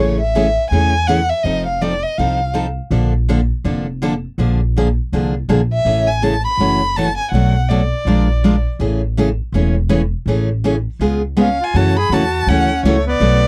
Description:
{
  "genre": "acoustic string swing (jazz manouche)",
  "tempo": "163 BPM",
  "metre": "4/4",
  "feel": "swing 61% on 8ths",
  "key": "unclear",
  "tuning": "A4 = 441 Hz",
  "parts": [
    { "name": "warm violin", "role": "melody", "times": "0.0-2.5, 5.7-8.6, 11.4-13.5 s", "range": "C#5 to B5", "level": "-21 LUFS", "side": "equal", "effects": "none" },
    { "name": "picked steel-string acoustic guitar", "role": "accompaniment", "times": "0.0-13.4 s", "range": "B2 to Bb4", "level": "-19 LUFS", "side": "equal", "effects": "none" },
    { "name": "upright bass", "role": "bass", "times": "0.0-13.5 s", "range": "E1 to F#2", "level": "-20 LUFS", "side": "equal", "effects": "none" },
    { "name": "accordion", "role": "second line", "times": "11.4-13.5 s", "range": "A3 to G#4", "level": "-24 LUFS", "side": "equal", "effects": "none" }
  ],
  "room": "little or no reverb",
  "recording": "dry, close 1970s-style studio recording",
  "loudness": "-17 LUFS",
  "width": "mono",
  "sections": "0.0-11.7 A section; 11.7-13.5 B section",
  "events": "none",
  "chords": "0.0 Amaj7; 1.4 F7; 2.9 Bbmaj7; 4.4 Bb7; 5.9 Amaj7; 6.6 F#m7; 7.3 Bm7; 8.1 Bb7; 8.8 Amaj7; 11.0 C#7; 11.7 F#m7"
}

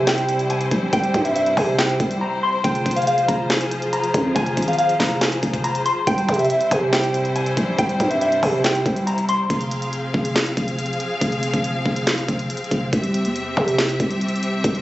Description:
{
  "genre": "hip hop, trap",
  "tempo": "140 BPM",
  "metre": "4/4",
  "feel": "half-time",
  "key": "F harmonic minor",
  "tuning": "A4 = 440 Hz",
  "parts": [
    { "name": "mellow electric guitar", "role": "melody", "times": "0.0-9.5 s", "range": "E5 to C6", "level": "-22 LUFS", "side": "equal", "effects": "spring reverb, tape echo" },
    { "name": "bright symphonic string section", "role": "sustained chords", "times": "0.0-14.8 s", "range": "C3 to F5", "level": "-25 LUFS", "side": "left 1 dB", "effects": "none" },
    { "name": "growling 808-style bass", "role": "bass", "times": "0.0-14.8 s", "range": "F1 to C3", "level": "-22 LUFS", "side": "equal", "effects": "none" },
    { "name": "trap drum kit", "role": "drums", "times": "0.1-14.8 s", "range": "handclaps, hi-hat, kick drum, snare drum", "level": "-23 LUFS", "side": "equal", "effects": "vintage 12-bit sampler grit" }
  ],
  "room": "little or no reverb",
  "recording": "recorded on a phone in the room, club reverb, nothing above 8.0 kHz",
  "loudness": "-18 LUFS",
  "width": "side -16 dB against mid",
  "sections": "0.0-9.5 A section; 9.5-14.8 B section",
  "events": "break 2.2-2.6",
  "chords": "0.0 C; 2.6 Fm; 6.1 C; 9.5 Fm; 12.9 C"
}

